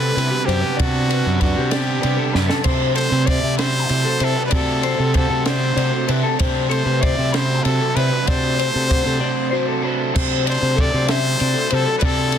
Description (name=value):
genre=math rock and midwest emo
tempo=64 BPM (dotted quarters)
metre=6/8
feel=straight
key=unclear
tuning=A4 = 440 Hz
part: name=brilliant trumpet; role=melody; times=0.0-12.4 s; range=F#4 to D5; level=-23 LUFS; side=equal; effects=digital delay
part: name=twelve-string electric guitar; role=accompaniment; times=0.0-12.0 s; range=C3 to C5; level=-26 LUFS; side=right 8 dB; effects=none
part: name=electric guitar through a small old amp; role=arpeggios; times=0.0-12.4 s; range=G4 to B5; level=-25 LUFS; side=left 8 dB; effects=phaser, plate reverb
part: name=overdriven electric guitar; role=riff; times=0.0-12.4 s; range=G2 to D4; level=-27 LUFS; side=right 1 dB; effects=none
part: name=fuzz fingered electric bass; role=bass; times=0.0-12.4 s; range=F#2 to C3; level=-21 LUFS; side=equal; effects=overdrive
part: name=compact cocktail drum kit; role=drums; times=0.2-12.4 s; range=crash cymbal, kick drum, ride cymbal, snare drum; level=-23 LUFS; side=equal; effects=none
room=light reverb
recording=dense, heavily limited modern master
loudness=-16 LUFS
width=side -8 dB against mid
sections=0.0-10.2 A section; 10.2-12.4 B section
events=drum fill 2.4-2.7; break 9.2-10.2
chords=0.0 Gmaj7; 2.7 D7/C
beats=| 0.79 1.73 | 2.66 3.60 | 4.53 5.47 | 6.41 7.34 | 8.28 9.21 | 10.15 11.09 | 12.02